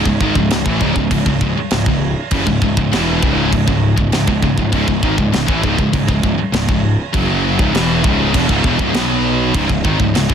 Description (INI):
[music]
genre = heavy metal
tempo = 100 BPM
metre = 4/4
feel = straight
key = C# minor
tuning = A4 = 440 Hz
[part]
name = heavy high-gain guitar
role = riff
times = 0.0-10.3 s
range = C#2 to B3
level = -20 LUFS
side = right 9 dB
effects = distortion
[part]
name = scooped high-gain guitar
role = riff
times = 0.0-10.3 s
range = C#2 to B3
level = -20 LUFS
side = left 8 dB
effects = distortion
[part]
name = thick fuzz guitar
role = riff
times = 0.0-10.3 s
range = C#2 to B3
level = -20 LUFS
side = left 1 dB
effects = distortion
[part]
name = fuzz picked electric bass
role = bass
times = 0.0-10.3 s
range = C#1 to B1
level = -21 LUFS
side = equal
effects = overdrive
[part]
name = tight metal drum kit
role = drums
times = 0.1-10.3 s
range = crash cymbal, kick drum, snare drum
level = -19 LUFS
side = equal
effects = none
[sound]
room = light reverb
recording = dense, heavily limited modern master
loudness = -13 LUFS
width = side -8 dB against mid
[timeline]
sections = 0.0-10.3 A section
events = none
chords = 0.0 C#m; 8.9 B5; 9.6 C#5